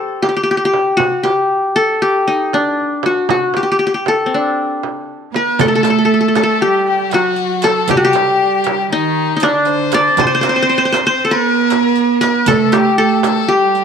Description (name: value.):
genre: Turkish makam ensemble.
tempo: 235 BPM (eighths).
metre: 9/8.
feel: straight.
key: unclear.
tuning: A4 = 439 Hz.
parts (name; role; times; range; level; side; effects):
qanun; melody; 0.0-13.8 s; C4 to D5; -14 LUFS; left 1 dB; none.
frame drum; percussion; 0.2-13.4 s; none; -22 LUFS; right 12 dB; none.
rich violin; second line; 5.3-13.8 s; D4 to C5; -20 LUFS; left 9 dB; none.
warm studio cello section; second line; 5.3-13.8 s; D3 to C4; -17 LUFS; right 8 dB; none.
darbuka; percussion; 5.6-13.7 s; none; -25 LUFS; left 9 dB; none.
riq; percussion; 5.6-13.8 s; none; -28 LUFS; right 10 dB; none.
room: moderate echo chamber reverb, RT60 1.6 s.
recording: 1960s-style stereo with parts hard left and right.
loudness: -12 LUFS.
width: side -7 dB against mid.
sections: 0.0-5.6 A section; 5.6-13.8 B section.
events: none.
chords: none.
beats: 0.23 0.48 0.74 | 0.99 1.25 1.51 1.76 2.02 2.27 2.53 2.78 3.04 | 3.30 3.55 3.81 4.06 4.32 4.57 4.83 5.08 5.34 | 5.59 5.85 6.10 6.36 6.61 6.87 7.12 7.38 7.63 | 7.89 8.14 8.40 8.65 8.90 9.16 9.41 9.67 9.92 | 10.18 10.43 10.69 10.94 11.20 11.45 11.71 11.96 12.22 | 12.47 12.73 12.98 13.24 13.49 13.75.